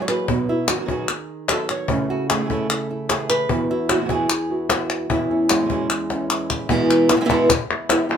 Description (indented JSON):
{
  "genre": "flamenco",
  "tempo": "150 BPM",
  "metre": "4/4",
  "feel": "straight",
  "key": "E major",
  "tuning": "A4 = 439 Hz",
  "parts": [
    { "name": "flamenco guitar", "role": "melody", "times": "0.0-8.2 s", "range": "E2 to C#5", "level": "-20 LUFS", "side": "right 1 dB", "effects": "none" },
    { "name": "flamenco guitar", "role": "stabs", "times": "0.1-8.2 s", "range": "E2 to F#4", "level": "-28 LUFS", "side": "right 2 dB", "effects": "none" },
    { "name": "palmas hand claps", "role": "percussion", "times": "0.1-8.2 s", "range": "none", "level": "-23 LUFS", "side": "left 3 dB", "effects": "none" },
    { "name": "cajon", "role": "percussion", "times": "0.3-8.2 s", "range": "none", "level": "-24 LUFS", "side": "left 4 dB", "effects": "none" }
  ],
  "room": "moderate studio reverb, RT60 0.6 s",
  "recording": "minimal, uncompressed stereo recording",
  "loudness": "-18 LUFS",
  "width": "side -8 dB against mid",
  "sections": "0.0-6.7 A section; 6.7-8.2 B section",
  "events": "drum fill 6.1-6.7",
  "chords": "0.3 B; 1.9 A/C#; 3.5 Esus2; 5.1 E6; 6.7 E"
}